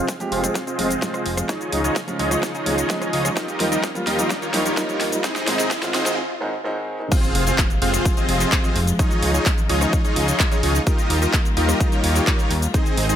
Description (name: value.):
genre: EDM, festival progressive house.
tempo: 128 BPM.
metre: 4/4.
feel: straight.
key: F minor.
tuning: A4 = 444 Hz.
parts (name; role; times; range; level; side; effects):
warm grand piano; accompaniment; 0.0-7.1 s; Ab2 to G4; -26 LUFS; right 1 dB; sidechain pumping, tape echo.
rich chamber string section; sustained chords; 0.0-13.2 s; C3 to F4; -29 LUFS; left 2 dB; sidechain pumping, low-pass filter.
dense compressed supersaw; riff; 0.0-13.2 s; C4 to F5; -23 LUFS; equal; vintage 12-bit sampler grit, sidechain pumping, low-pass filter, tape echo.
fat analog bass; bass; 0.0-13.1 s; F1 to Eb2; -24 LUFS; equal; sidechain pumping.
riser and impact; sound effects; 2.0-9.0 s; none; -32 LUFS; equal; none.
big-room dance drum kit; drums; 0.1-13.2 s; crash cymbal, handclaps, hi-hat, rim click, shaker, snare drum; -26 LUFS; left 1 dB; overdrive, high-pass filter on hats, high-pass filter on snare, high-pass filter on perc, high-pass filter on cymbals.
electronic kick drum; drums; 0.1-12.8 s; none; -20 LUFS; equal; overdrive, high-pass filter on kick.
room: light reverb, digital ambience.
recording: high-pass filter.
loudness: -18 LUFS.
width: side -10 dB against mid.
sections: 0.0-7.1 A section; 7.1-13.2 B section.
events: build-up 0.0-7.1; drum fill 0.0-6.2; filter sweep on supersaw synth 0.0-7.1; break 6.2-7.1; drop 7.1-13.2; impact 7.1-9.0.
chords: 0.0 Fm; 1.5 Dbadd9; 3.4 Ebadd9; 5.2 Ab; 7.1 Fm; 9.0 Dbadd9; 10.9 Ebadd9.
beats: 0.09 0.55 1.02 | 1.49 1.96 2.43 2.90 | 3.37 3.83 4.30 4.77 | 5.24 5.71 6.18 6.65 | 7.12 7.58 8.05 8.52 | 8.99 9.46 9.93 10.40 | 10.87 11.34 11.80 12.27 | 12.74.